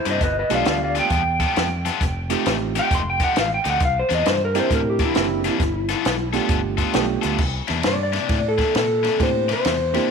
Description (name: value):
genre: electric blues shuffle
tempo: 134 BPM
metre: 4/4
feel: swing 64% on 8ths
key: C mixolydian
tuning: A4 = 438 Hz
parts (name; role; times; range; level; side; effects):
- electric slide guitar; melody; 0.0-10.1 s; E4 to C6; -22 LUFS; left 1 dB; none
- cranked stack guitar; riff; 0.1-10.1 s; C3 to A4; -26 LUFS; left 12 dB; overdrive
- fingered electric bass; bass; 0.1-10.0 s; F1 to Bb2; -26 LUFS; equal; none
- compact cocktail drum kit; drums; 0.1-10.0 s; crash cymbal, hi-hat, kick drum, ride cymbal, snare drum; -24 LUFS; equal; none
- barky reed electric piano; accompaniment; 0.5-10.1 s; A3 to Bb4; -25 LUFS; right 13 dB; overdrive
room: light reverb, small room ambience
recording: 1960s-style stereo with parts hard left and right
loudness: -18 LUFS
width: side -6 dB against mid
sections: 0.0-7.4 A section; 7.4-10.1 A section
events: electric slide guitar solo 0.0-10.1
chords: 0.2 G9; 2.0 F9; 3.8 C9; 5.6 G9; 7.4 C9